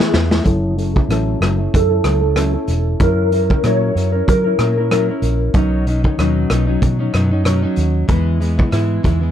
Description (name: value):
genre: indie pop, bedroom pop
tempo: 94 BPM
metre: 4/4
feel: swing 55% on 16ths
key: unclear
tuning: A4 = 440 Hz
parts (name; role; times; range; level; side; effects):
- electric slide guitar; melody; 0.0-5.2 s; G#4 to C#5; -20 LUFS; equal; ensemble chorus, low-pass filter, tape echo
- nylon-string guitar; accompaniment; 0.0-9.3 s; B2 to A#4; -20 LUFS; left 2 dB; wide subtle chorus, warbly pitch drift, low-pass filter
- raw garage drum kit; drums; 0.0-9.2 s; hi-hat, kick drum, rim click, snare drum; -19 LUFS; equal; none
- vintage muted fingered electric bass; bass; 0.1-9.3 s; E1 to F#3; -18 LUFS; right 1 dB; none
room: little or no reverb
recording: none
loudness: -14 LUFS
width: side -10 dB against mid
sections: 0.5-9.3 A section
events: drum fill 0.0-0.5; filter sweep 0.5-9.3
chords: 0.5 F#m7; 3.0 F#7; 5.5 Badd9; 8.1 E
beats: | 0.46 1.10 1.73 2.37 | 3.00 3.64 4.28 4.91 | 5.55 6.18 6.82 7.46 | 8.09 8.73